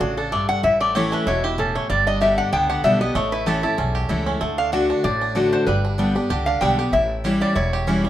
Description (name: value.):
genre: bluegrass.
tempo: 191 BPM.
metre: 4/4.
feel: swing 54% on 8ths.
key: unclear.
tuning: A4 = 440 Hz.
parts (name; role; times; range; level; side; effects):
lap resonator guitar; melody; 0.0-7.9 s; E4 to G5; -21 LUFS; left 1 dB; none.
picked steel-string acoustic guitar; accompaniment; 0.0-8.1 s; E2 to G4; -23 LUFS; left 1 dB; none.
bluegrass banjo; arpeggios; 0.0-8.1 s; G3 to G4; -26 LUFS; right 4 dB; none.
upright bass; bass; 0.0-8.1 s; E1 to D2; -27 LUFS; equal; none.
room: moderate studio reverb, RT60 0.8 s.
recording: minimal, uncompressed stereo recording.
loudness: -18 LUFS.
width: side -12 dB against mid.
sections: 0.0-8.1 A section.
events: none.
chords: 0.0 D; 0.6 A; 1.9 G; 3.2 A; 4.4 D; 5.7 G; 6.9 A7.